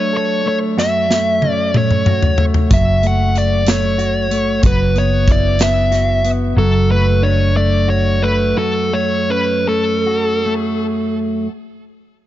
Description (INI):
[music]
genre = six-eight pop ballad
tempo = 62 BPM (dotted quarters)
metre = 6/8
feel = uneven beats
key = F# minor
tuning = A4 = 440 Hz
[part]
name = dark smooth lead guitar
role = melody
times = 0.0-10.5 s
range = A4 to F#5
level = -18 LUFS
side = left 1 dB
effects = overdrive, ping-pong delay
[part]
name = mellow electric guitar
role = accompaniment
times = 0.0-11.5 s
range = F#2 to A4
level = -19 LUFS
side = right 1 dB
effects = none
[part]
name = modern studio drum kit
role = drums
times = 0.8-6.4 s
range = hi-hat, kick drum, snare drum, toms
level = -16 LUFS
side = equal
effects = none
[part]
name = hollow-body short-scale fingered electric bass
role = bass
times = 2.7-8.5 s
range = F#1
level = -16 LUFS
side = equal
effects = none
[sound]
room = little or no reverb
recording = dark, warm production, nothing above 7.5 kHz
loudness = -13 LUFS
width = side -13 dB against mid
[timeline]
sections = 0.0-10.9 A section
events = drum fill 0.8-2.7; slowing down 6.6-10.9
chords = 0.0 D/F#; 0.8 A/F#; 2.7 F#m; 4.6 E5/F#; 6.6 D/F#; 8.6 F#m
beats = | 0.78 1.74 | 2.70 3.67 | 4.63 5.60 | 6.56 7.54 | 8.56 9.66